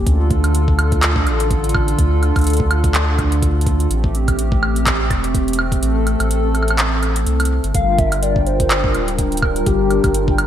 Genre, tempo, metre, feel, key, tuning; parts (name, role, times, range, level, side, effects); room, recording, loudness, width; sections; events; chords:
IDM; 125 BPM; 4/4; swing 56% on 16ths; G dorian; A4 = 440 Hz
hollow soft pad; sustained chords; 0.0-10.5 s; D3 to Bb4; -21 LUFS; equal; chorus
round analog bass; bass; 0.0-10.5 s; D1 to D2; -18 LUFS; equal
booming analog drum machine; drums; 0.1-10.5 s; handclaps, hi-hat, woodblock; -22 LUFS; right 1 dB; gated reverb
electronic kick drum; drums; 0.1-10.4 s; -20 LUFS; equal
warbly nostalgic lead; melody; 7.7-10.4 s; G4 to F5; -20 LUFS; left 4 dB; analog chorus, ping-pong delay
pulsing gated texture; texture; 7.7-10.5 s; G5; -32 LUFS; right 2 dB; chorus, built-in reverb
moderate lush hall reverb, RT60 1.9 s; bright 1980s-style digital production; -14 LUFS; side -10 dB against mid
0.0-10.5 A section
kick drops out 5.8-7.7
0.1 Dm; 3.9 Am7; 7.7 Gm7